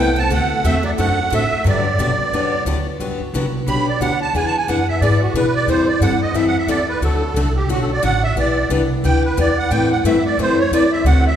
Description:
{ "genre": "acoustic string swing (jazz manouche)", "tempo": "179 BPM", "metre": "4/4", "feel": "swing 59% on 8ths", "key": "G major", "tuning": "A4 = 438 Hz", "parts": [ { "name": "musette accordion", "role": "melody", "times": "0.0-11.4 s", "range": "F#4 to B5", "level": "-20 LUFS", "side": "right 3 dB", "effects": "none" }, { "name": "picked steel-string acoustic guitar", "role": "second line", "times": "0.0-2.6 s", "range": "F#3 to C4", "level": "-28 LUFS", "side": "right 1 dB", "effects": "none" }, { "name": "picked steel-string acoustic guitar", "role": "accompaniment", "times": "0.0-11.3 s", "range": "D3 to B4", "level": "-20 LUFS", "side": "left 2 dB", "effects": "none" }, { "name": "upright bass", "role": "bass", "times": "0.0-11.4 s", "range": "G1 to B2", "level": "-20 LUFS", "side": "equal", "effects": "none" } ], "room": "wet scoring stage reverb, RT60 2.0 s", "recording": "recorded in a church or concert hall", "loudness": "-15 LUFS", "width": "side -9 dB against mid", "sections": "0.0-3.0 A section; 3.0-11.4 B section", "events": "accordion solo 3.0-11.4", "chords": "0.3 D7; 1.7 Gmaj7; 4.3 E7; 5.7 Am7/E; 7.0 D; 8.4 Em7; 9.7 Amadd9" }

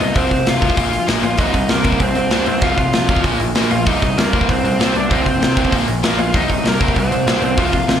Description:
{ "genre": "punk rock", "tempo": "194 BPM", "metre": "4/4", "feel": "straight", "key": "C minor", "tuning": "A4 = 440 Hz", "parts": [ { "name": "biting lead guitar", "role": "melody", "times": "0.0-8.0 s", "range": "Bb3 to F5", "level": "-20 LUFS", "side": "right 1 dB", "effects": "overdrive, slapback echo" }, { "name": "distorted electric guitar", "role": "riff", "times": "0.0-8.0 s", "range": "F2 to C4", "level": "-22 LUFS", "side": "left 8 dB", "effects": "overdrive, slapback echo" }, { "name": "clear grand piano", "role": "bass", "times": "0.0-8.0 s", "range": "Ab1 to C3", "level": "-22 LUFS", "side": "equal", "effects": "none" }, { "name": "big rock drum kit", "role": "drums", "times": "0.0-8.0 s", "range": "hi-hat, kick drum, snare drum", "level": "-18 LUFS", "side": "equal", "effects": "none" }, { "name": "raw garage guitar", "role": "riff", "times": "1.4-8.0 s", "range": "F2 to C4", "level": "-23 LUFS", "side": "right 10 dB", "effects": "overdrive, slapback echo" } ], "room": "small room reverb", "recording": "live gig heard through the venue's PA, club reverb", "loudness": "-14 LUFS", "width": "side -9 dB against mid", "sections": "0.0-8.0 A section", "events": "none", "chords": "0.2 F5/C; 0.8 Bb5; 1.4 Cm; 2.6 Fm/C; 3.2 Bb5; 3.9 Cm; 5.1 F5/C; 5.7 Bb5; 6.3 Cm" }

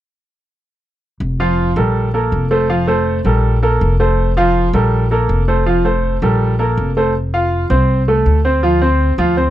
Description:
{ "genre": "latin, salsa", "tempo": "162 BPM", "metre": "4/4", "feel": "straight", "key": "F major", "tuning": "A4 = 438 Hz", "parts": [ { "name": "upright bass", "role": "bass", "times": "1.2-9.5 s", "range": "F1 to D2", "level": "-16 LUFS", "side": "equal", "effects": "none" }, { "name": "clear baby grand piano", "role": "accompaniment", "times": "1.4-9.5 s", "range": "F3 to F5", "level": "-15 LUFS", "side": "right 1 dB", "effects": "none" } ], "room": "small room ambience", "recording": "dry, close 1970s-style studio recording", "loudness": "-12 LUFS", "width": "side -13 dB against mid", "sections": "1.2-7.1 A section; 7.1-9.5 B section", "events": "none", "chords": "1.2 Fadd9; 7.1 F; 8.6 Bbadd9 (rootless)" }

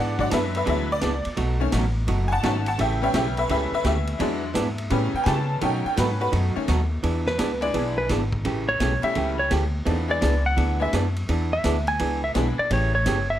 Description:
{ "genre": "country, western swing", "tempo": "170 BPM", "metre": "4/4", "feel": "swing 65% on 8ths", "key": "E mixolydian", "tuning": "A4 = 440 Hz", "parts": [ { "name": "archtop guitar, miked and amplified", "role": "accompaniment", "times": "0.0-13.2 s", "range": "B2 to G#4", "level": "-28 LUFS", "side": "right 3 dB", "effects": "none" }, { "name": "tack piano", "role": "accompaniment", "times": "0.0-12.6 s", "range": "D#3 to A5", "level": "-26 LUFS", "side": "left 2 dB", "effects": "none" }, { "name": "upright bass", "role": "bass", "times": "0.0-13.4 s", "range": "F#1 to C#3", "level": "-25 LUFS", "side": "equal", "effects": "none" }, { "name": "vintage drum kit", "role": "drums", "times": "0.2-13.2 s", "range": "hi-hat, kick drum, ride cymbal, snare drum", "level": "-32 LUFS", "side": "equal", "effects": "none" }, { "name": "clean lap steel guitar", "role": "melody", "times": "7.3-13.4 s", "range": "B4 to G#5", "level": "-25 LUFS", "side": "equal", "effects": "plate reverb" } ], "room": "moderate club reverb, RT60 0.6 s", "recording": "none", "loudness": "-21 LUFS", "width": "side -12 dB against mid", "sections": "0.0-7.0 A section; 7.0-13.4 A section", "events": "honky-tonk piano solo 0.0-7.0; electric slide guitar solo 7.0-13.4", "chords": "0.0 E7; 1.4 B7; 2.8 A7; 4.2 E7; 4.9 A7; 5.6 B7; 7.0 E7; 8.4 A7; 9.9 E7; 12.7 A7" }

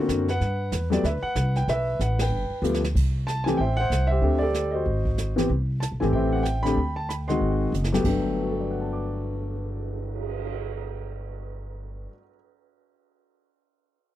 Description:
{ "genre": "jazz piano trio", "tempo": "188 BPM", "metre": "4/4", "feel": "swing 61% on 8ths", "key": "G major", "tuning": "A4 = 440 Hz", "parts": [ { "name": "warm concert grand piano", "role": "melody", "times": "0.0-12.3 s", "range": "G2 to D6", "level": "-26 LUFS", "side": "left 1 dB", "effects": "none" }, { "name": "upright bass", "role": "bass", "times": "0.0-12.1 s", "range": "Gb1 to G2", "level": "-27 LUFS", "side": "equal", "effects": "none" }, { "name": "jazz brush drum kit", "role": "drums", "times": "0.1-10.5 s", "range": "brushed snare drum, crash cymbal, cymbal swell, hi-hat, kick drum, ride cymbal, snare drum", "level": "-32 LUFS", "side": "right 1 dB", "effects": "none" } ], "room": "little or no reverb", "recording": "dry, close 1970s-style studio recording", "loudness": "-23 LUFS", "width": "side -13 dB against mid", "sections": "0.0-3.0 A section; 3.0-8.0 B section; 8.0-10.6 C section", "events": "band accent 2.2; drum fill 2.6-3.0, 7.7-8.0", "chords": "0.4 Gmaj9; 2.3 G9; 3.0 N.C.; 3.6 Am7; 4.2 D7sus4; 4.9 Ab7; 5.5 Cmaj7; 6.1 Am7; 6.8 D7sus4; 7.4 Ab7; 8.0 Gmaj9" }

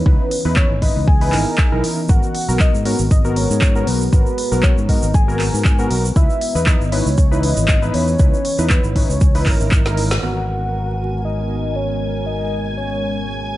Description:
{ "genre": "deep house", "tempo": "118 BPM", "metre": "4/4", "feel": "swing 54% on 16ths", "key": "G# minor", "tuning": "A4 = 440 Hz", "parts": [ { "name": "warm velvety synth lead", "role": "melody", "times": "0.0-13.6 s", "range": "B4 to G#5", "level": "-25 LUFS", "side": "equal", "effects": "chorus, tremolo, analog delay" }, { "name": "deep dark ambient pad", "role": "sustained chords", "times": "0.0-13.6 s", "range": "E3 to A#5", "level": "-27 LUFS", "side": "left 1 dB", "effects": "chorus, built-in reverb, sidechain pumping" }, { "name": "warm analog keys", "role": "stabs", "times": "0.1-13.6 s", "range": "B3 to B4", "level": "-24 LUFS", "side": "equal", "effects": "chorus, sidechain pumping, low-pass filter" }, { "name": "fingered electric bass", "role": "bass", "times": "0.1-13.6 s", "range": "G#1 to G#2", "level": "-20 LUFS", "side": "equal", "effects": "sidechain pumping, low-pass filter" }, { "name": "electronic kick drum", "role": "drums", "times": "0.1-9.8 s", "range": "none", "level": "-15 LUFS", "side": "equal", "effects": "studio reverb" }, { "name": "deep house drum kit", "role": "drums", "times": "0.3-10.2 s", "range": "handclaps, hi-hat, snare drum", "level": "-24 LUFS", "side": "equal", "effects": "studio reverb" }, { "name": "egg shaker", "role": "percussion", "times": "2.1-10.2 s", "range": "none", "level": "-31 LUFS", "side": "right 4 dB", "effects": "none" }, { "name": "soft string machine", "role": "texture", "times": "10.2-13.6 s", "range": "G#5 to G#6", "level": "-31 LUFS", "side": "right 1 dB", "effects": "ensemble chorus, sidechain pumping" } ], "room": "little or no reverb", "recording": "vinyl crackle, nothing above 10.9 kHz", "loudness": "-14 LUFS", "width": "side -15 dB against mid", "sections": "0.0-10.2 A section; 10.2-13.6 B section", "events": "drum fill 9.8-10.2; band accent 10.1", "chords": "0.0 C#m9; 2.1 G#m9; 6.2 C#m9; 10.2 G#m9" }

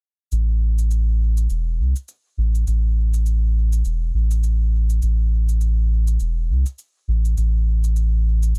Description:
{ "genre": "ambient dub", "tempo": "102 BPM", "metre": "4/4", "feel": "swing 58% on 16ths", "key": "A minor", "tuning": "A4 = 440 Hz", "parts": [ { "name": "soft dub sub bass", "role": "bass", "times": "0.3-8.6 s", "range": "E1 to C2", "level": "-20 LUFS", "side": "equal", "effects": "none" }, { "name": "shaker", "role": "drums", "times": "0.3-8.6 s", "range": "none", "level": "-44 LUFS", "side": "equal", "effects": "overdrive" } ], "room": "little or no reverb", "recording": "dark, warm production", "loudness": "-20 LUFS", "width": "mono", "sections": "0.3-8.6 A section", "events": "none", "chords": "none" }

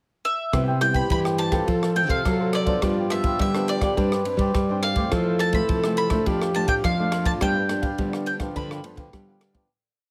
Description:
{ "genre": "samba and choro", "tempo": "105 BPM", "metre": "4/4", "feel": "straight", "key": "C major", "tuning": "A4 = 440 Hz", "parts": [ { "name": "bowl-back mandolin", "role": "melody", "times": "0.2-9.4 s", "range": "D5 to B5", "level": "-29 LUFS", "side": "equal", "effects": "none" }, { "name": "breathy tenor saxophone", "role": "second line", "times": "0.5-9.4 s", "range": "D4 to B4", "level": "-30 LUFS", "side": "equal", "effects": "none" }, { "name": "cavaquinho", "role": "accompaniment", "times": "0.5-9.7 s", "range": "D4 to G5", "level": "-35 LUFS", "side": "equal", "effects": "none" }, { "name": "nylon-string guitar", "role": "accompaniment", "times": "0.5-9.7 s", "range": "F2 to A4", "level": "-32 LUFS", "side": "equal", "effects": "none" }, { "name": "nylon-string guitar", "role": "bass", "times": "0.5-9.6 s", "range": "A2 to G3", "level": "-28 LUFS", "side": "equal", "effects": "none" }, { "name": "compact cocktail drum kit", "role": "drums", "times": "0.5-9.7 s", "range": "kick drum, ride cymbal, rim click", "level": "-30 LUFS", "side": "equal", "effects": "none" } ], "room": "light reverb", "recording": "none", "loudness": "-23 LUFS", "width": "mono", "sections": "0.0-0.5 pickup bar; 0.5-9.7 A section", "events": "fade-out 7.4-9.7", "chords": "0.0 N.C.; 0.5 Cmaj7; 1.7 F; 2.8 G7; 4.0 Csus2/G; 5.1 Fmaj7; 6.3 Dm/F; 7.4 G7" }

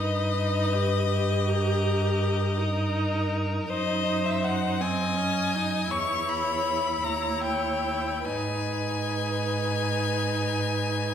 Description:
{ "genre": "classical, slow romantic movement for string quartet", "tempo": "47-55 BPM (dotted quarters)", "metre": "12/8", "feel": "rubato", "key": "G# minor", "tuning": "A4 = 440 Hz", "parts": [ { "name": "clear violin", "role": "melody", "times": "0.0-11.1 s", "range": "D#5 to C#6", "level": "-29 LUFS", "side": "left 6 dB", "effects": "none" }, { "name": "rich violin", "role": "second line", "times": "0.0-11.1 s", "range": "A#4 to D#5", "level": "-32 LUFS", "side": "equal", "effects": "none" }, { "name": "rich viola", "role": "accompaniment", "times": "0.0-11.1 s", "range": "B#3 to G4", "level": "-31 LUFS", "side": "right 2 dB", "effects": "none" }, { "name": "rich cello", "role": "bass", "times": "0.0-11.1 s", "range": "D#2 to G#2", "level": "-29 LUFS", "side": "right 2 dB", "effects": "none" } ], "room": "wet recital hall reverb, RT60 1.7 s", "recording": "recorded in a church or concert hall", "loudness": "-24 LUFS", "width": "side -8 dB against mid", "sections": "0.0-11.1 A section", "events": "none", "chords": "0.0 D#/G; 3.7 G#7/F#; 5.9 C#m/E; 7.0 D#7b9; 8.2 G#m" }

